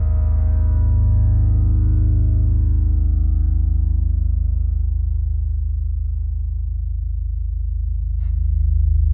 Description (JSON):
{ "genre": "dark ambient drone", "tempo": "free time", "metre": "none", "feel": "none", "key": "unclear", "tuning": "A4 = 440 Hz", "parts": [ { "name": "clear concert grand piano", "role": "arpeggios", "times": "0.0-8.0 s", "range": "C#2 to D#3", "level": "-44 LUFS", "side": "right 2 dB", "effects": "tape echo, shimmer reverb" }, { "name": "deep rumbling drone", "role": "drone", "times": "0.0-9.1 s", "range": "G#1 to D#2", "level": "-17 LUFS", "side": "equal", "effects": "built-in reverb, lush chorus" } ], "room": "moderate cathedral reverb, RT60 6.0 s", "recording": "worn, warbling old tape, cassette tape, warbly pitch drift", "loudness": "-17 LUFS", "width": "side -30 dB against mid", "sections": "0.0-8.0 A section; 8.0-9.1 B section", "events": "fade-out on grand piano 0.0-8.0", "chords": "0.0 G#5" }